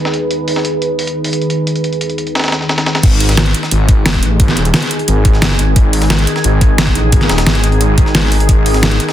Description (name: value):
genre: dark technical drum and bass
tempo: 176 BPM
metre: 4/4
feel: straight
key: G# minor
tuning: A4 = 440 Hz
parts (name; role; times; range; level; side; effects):
- deep dark ambient pad; sustained chords; 0.0-9.1 s; D#3 to G#5; -18 LUFS; equal; chorus, built-in reverb, sidechain pumping
- breakbeat sampler-style drum kit; drums; 0.1-9.1 s; hi-hat, snare drum; -20 LUFS; equal; high-pass filter on hats, low-pass filter on hats, high-pass filter on snare, low-pass filter on snare
- wide detuned saw bass; bass; 3.0-9.0 s; D#1 to A1; -13 LUFS; equal; chorus, overdrive
- dubstep drum kit; drums; 3.0-9.1 s; crash cymbal, hi-hat, snare drum; -15 LUFS; equal; none
- electronic kick drum; drums; 3.0-8.6 s; none; -11 LUFS; equal; none
room: light reverb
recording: dense, heavily limited modern master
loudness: -10 LUFS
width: side -12 dB against mid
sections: 0.0-3.0 A section; 3.0-9.1 B section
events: drop 3.0-9.1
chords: 0.0 G#5